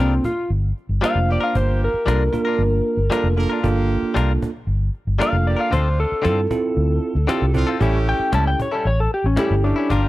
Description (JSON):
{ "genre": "straight-eighth soul blues", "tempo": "115 BPM", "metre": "4/4", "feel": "straight", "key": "unclear", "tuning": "A4 = 440 Hz", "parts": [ { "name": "electric slide guitar", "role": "melody", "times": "0.0-10.1 s", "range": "C4 to A5", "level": "-22 LUFS", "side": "left 1 dB", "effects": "none" }, { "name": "bell-like tine electric piano", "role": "accompaniment", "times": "0.0-9.9 s", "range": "Bb3 to C5", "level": "-24 LUFS", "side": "right 5 dB", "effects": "none" }, { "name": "direct-recorded clean electric guitar", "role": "stabs", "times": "0.0-10.1 s", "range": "A2 to Bb4", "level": "-25 LUFS", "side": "left 5 dB", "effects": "none" }, { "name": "vintage muted fingered electric bass", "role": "bass", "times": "0.0-10.1 s", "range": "F1 to G2", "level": "-19 LUFS", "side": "equal", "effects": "none" }, { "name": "cajon", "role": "drums", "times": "0.2-10.0 s", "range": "none", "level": "-29 LUFS", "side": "equal", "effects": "none" }, { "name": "brilliant horn section", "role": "sustained chords", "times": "1.3-10.1 s", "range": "A3 to Bb4", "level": "-31 LUFS", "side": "right 1 dB", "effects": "none" } ], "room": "small room ambience", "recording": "dry, close 1970s-style studio recording", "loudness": "-17 LUFS", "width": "side -16 dB against mid", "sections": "0.0-10.1 A section", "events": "electric slide guitar solo 0.0-10.1", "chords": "0.0 Gm7; 5.7 Dm7; 7.8 A7" }